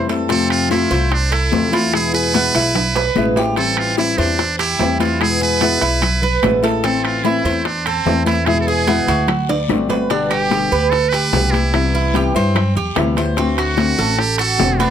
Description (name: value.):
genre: latin, Cuban son and guajira.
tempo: 147 BPM.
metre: 4/4.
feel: straight.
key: A harmonic minor.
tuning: A4 = 444 Hz.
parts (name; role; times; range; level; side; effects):
trumpet with metal mute; melody; 0.0-14.9 s; C4 to C5; -20 LUFS; right 4 dB; none.
flamenco guitar; accompaniment; 0.0-14.9 s; B2 to G4; -19 LUFS; left 4 dB; none.
Cuban tres; arpeggios; 0.0-14.9 s; B3 to D5; -21 LUFS; right 4 dB; none.
upright bass; bass; 0.0-14.9 s; E1 to G2; -21 LUFS; equal; none.
bongos; percussion; 0.1-14.9 s; none; -25 LUFS; left 10 dB; none.
congas; percussion; 0.1-14.9 s; none; -25 LUFS; left 4 dB; none.
guiro; percussion; 0.1-14.9 s; none; -34 LUFS; left 7 dB; none.
timbales; percussion; 0.1-14.9 s; none; -26 LUFS; right 7 dB; none.
claves; percussion; 0.5-14.6 s; none; -32 LUFS; left 4 dB; none.
room: light reverb.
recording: close, detailed microphones.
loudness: -14 LUFS.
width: side -9 dB against mid.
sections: 0.0-10.1 A section; 10.1-14.9 B section.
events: drum fill 2.8-3.6, 9.5-10.1.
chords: 0.3 F; 1.9 E; 3.6 Am7; 5.2 E; 6.8 Am; 8.5 E; 9.3 D7; 10.1 G; 11.7 Cmaj7; 13.4 D7.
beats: | 0.30 0.71 1.12 1.53 | 1.94 2.34 2.75 3.16 | 3.57 3.98 4.39 4.80 | 5.21 5.62 6.02 6.43 | 6.84 7.25 7.66 8.07 | 8.48 8.88 9.29 9.70 | 10.11 10.52 10.93 11.33 | 11.74 12.15 12.56 12.97 | 13.37 13.78 14.19 14.60.